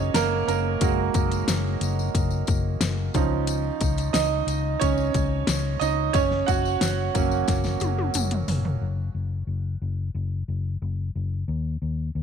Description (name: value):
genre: piano-driven pop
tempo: 90 BPM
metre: 4/4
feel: straight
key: F# major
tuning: A4 = 440 Hz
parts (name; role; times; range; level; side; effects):
- bright upright piano; accompaniment; 0.0-8.8 s; E#3 to F#5; -25 LUFS; right 10 dB; none
- vintage muted fingered electric bass; bass; 0.0-12.2 s; F#1 to D#2; -26 LUFS; left 3 dB; none
- pop drum kit; drums; 0.1-8.8 s; hi-hat, kick drum, snare drum, toms; -27 LUFS; left 2 dB; none
- tambourine; percussion; 0.2-8.6 s; none; -36 LUFS; left 18 dB; none
room: light reverb, digital ambience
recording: 1960s-style stereo with parts hard left and right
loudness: -22 LUFS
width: side -7 dB against mid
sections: 0.0-8.8 A section; 8.8-12.2 B section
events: upright piano solo 0.0-8.8; drum fill 7.5-8.8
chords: 0.0 F#add9; 3.1 C#add9; 6.1 F#; 8.8 N.C.